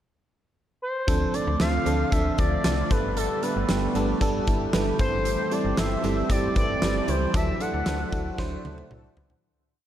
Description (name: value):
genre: 1980s-style pop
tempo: 115 BPM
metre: 4/4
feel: straight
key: unclear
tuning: A4 = 440 Hz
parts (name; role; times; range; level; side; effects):
- expressive portamento lead; melody; 0.8-8.4 s; A4 to F#5; -29 LUFS; left 1 dB; chorus, diffuse ambient delay
- FM electric piano; accompaniment; 1.1-9.6 s; F3 to F#5; -28 LUFS; right 1 dB; chorus
- sweeping resonant pad; sustained chords; 1.1-9.4 s; D3 to G4; -33 LUFS; right 2 dB; chorus, phaser
- slap-like FM bass; bass; 1.1-9.4 s; G1 to D2; -29 LUFS; equal; none
- huge arena drum kit; drums; 1.1-9.4 s; hi-hat, kick drum, snare drum, toms; -27 LUFS; equal; none
- mellow synth brass; stabs; 7.9-9.1 s; E4 to A4; -44 LUFS; left 4 dB; chorus
room: moderate huge ambient reverb, RT60 8.2 s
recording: dreamy mix soaked in reverb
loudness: -22 LUFS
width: side -11 dB against mid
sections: 0.0-1.1 pickup bar; 1.1-9.4 pre-chorus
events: fade-out 7.3-9.4; band accent 7.3-9.4; drum fill 8.4-9.4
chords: 0.0 N.C.; 1.1 Dm7; 2.9 Gadd9; 5.0 C6/G; 7.3 Dadd9